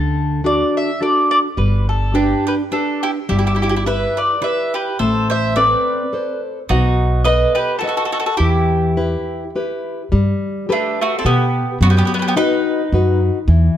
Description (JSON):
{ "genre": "italian folk, Italian serenade", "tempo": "106 BPM", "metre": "3/4", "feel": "swing 55% on 8ths", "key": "E minor, G major from 10.1 s", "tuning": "A4 = 440 Hz", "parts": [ { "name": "mandolin", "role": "melody", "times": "0.0-13.2 s", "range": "A3 to E5", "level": "-20 LUFS", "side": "equal", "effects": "none" }, { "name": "nylon-string guitar", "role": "accompaniment", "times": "0.0-13.8 s", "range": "D3 to D#5", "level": "-20 LUFS", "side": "left 2 dB", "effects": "none" }, { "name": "upright bass", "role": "bass", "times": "0.0-13.7 s", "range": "G1 to B2", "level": "-17 LUFS", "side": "equal", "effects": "none" }, { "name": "bowl-back mandolin", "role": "second line", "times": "2.1-13.2 s", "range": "D4 to C5", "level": "-23 LUFS", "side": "right 3 dB", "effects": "none" } ], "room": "light reverb", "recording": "close, detailed microphones", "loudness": "-15 LUFS", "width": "side -10 dB against mid", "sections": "0.0-10.1 A section; 10.1-13.8 B section", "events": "none", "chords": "0.0 D; 1.6 G; 3.3 Em/G; 5.0 Amadd9; 6.7 B7; 8.4 Em; 10.1 Gadd9; 11.8 B/F#", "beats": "0.45 1.01 | 1.58 2.15 2.73 | 3.30 3.87 4.44 | 5.00 5.57 6.13 | 6.70 7.26 7.83 | 8.40 8.97 9.55 | 10.12 10.69 11.25 | 11.81 12.37 12.93 | 13.48" }